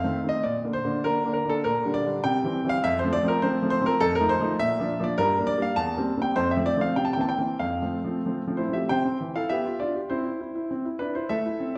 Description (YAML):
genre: classical-period piano sonatina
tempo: 100 BPM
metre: 2/4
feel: rubato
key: F major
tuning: A4 = 440 Hz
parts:
  - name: warm baby grand piano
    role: solo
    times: 0.0-11.8 s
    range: E2 to A5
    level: -26 LUFS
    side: equal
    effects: none
room: wet recital hall reverb, RT60 1.5 s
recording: heard from further back in the room, lossy compression artefacts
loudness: -26 LUFS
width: mono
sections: 0.0-8.9 A section; 8.9-11.8 B section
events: none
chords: 0.4 Bb; 1.6 Gm/Bb; 2.2 C; 2.8 F; 4.0 F7; 4.6 Bb; 5.2 Gm; 5.8 C7/E; 6.4 F; 7.0 C7; 7.6 F; 8.9 C; 9.5 G7/B; 10.1 C